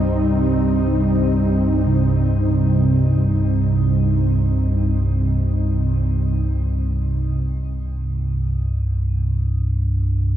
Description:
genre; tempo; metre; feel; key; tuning
ambient; free time; none; none; C minor; A4 = 440 Hz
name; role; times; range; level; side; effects
sweeping resonant pad; sustained chords; 0.0-7.4 s; C3 to Eb4; -22 LUFS; equal; chorus, shimmer reverb
deep rumbling drone; drone; 0.0-10.4 s; C2 to G2; -19 LUFS; equal; built-in reverb, wide subtle chorus
quartz singing bowl; arpeggios; 1.9-7.5 s; C3; -26 LUFS; right 5 dB; diffuse ambient delay
room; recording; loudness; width
light reverb; dark, warm production; -17 LUFS; side -11 dB against mid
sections
0.0-7.4 A section; 7.4-10.4 B section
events
none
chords
0.0 Cm; 7.4 C5

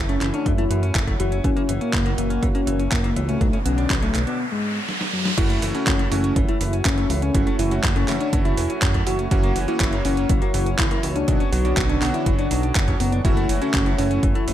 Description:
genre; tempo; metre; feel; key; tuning
italo disco; 122 BPM; 4/4; straight; F# minor; A4 = 444 Hz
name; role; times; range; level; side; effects
warm analog pad; sustained chords; 0.0-14.5 s; D3 to C#5; -30 LUFS; right 2 dB; chorus
direct-recorded clean electric guitar; arpeggios; 0.0-14.5 s; E3 to D4; -32 LUFS; left 3 dB; lush chorus, ping-pong delay
chorused synth bass; bass; 0.0-14.5 s; E1 to F#2; -24 LUFS; equal; none
soft octave-layered synth lead; melody; 0.1-14.5 s; F#3 to F#4; -25 LUFS; left 3 dB; chorus, ping-pong delay
gated 80s digital drum machine; drums; 0.1-14.5 s; crash cymbal, handclaps, hi-hat, snare drum; -27 LUFS; right 1 dB; gated reverb, gated reverb snare, overdrive
electronic kick drum; drums; 0.5-14.3 s; none; -23 LUFS; equal; none
riser; sound effects; 2.8-5.4 s; none; -30 LUFS; right 2 dB; none
bright electric grand piano; stabs; 5.4-14.2 s; A3 to F#4; -30 LUFS; right 5 dB; ping-pong delay
room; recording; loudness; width
digital ambience; none; -18 LUFS; side -12 dB against mid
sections
0.0-5.4 A section; 5.4-14.5 B section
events
riser 2.8-5.4; break 4.4-5.4; drum fill 4.9-5.4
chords
0.0 F#m7; 1.4 F#7; 3.4 Bmadd9; 4.4 N.C.; 5.4 F#m7; 9.3 F#7; 11.3 Bmadd9; 13.2 F#m7

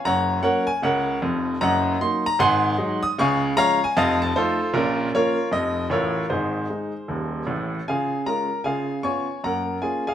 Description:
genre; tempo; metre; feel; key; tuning
jazz, stride piano; 154 BPM; 4/4; swing 64% on 8ths; Db major; A4 = 440 Hz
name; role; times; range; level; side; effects
clear baby grand piano; solo; 0.0-10.1 s; Eb1 to Eb6; -20 LUFS; equal; none
room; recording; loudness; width
wet studio reverb, RT60 0.9 s; heard from further back in the room; -20 LUFS; side -10 dB against mid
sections
0.0-7.9 A section; 7.9-10.1 B section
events
none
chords
0.0 F#; 1.6 Ebm/Gb; 2.4 Ab7; 3.2 Db; 4.0 F7; 4.7 Bbm; 6.3 Ab; 7.9 Db; 8.6 Db7; 9.4 Gbmaj7

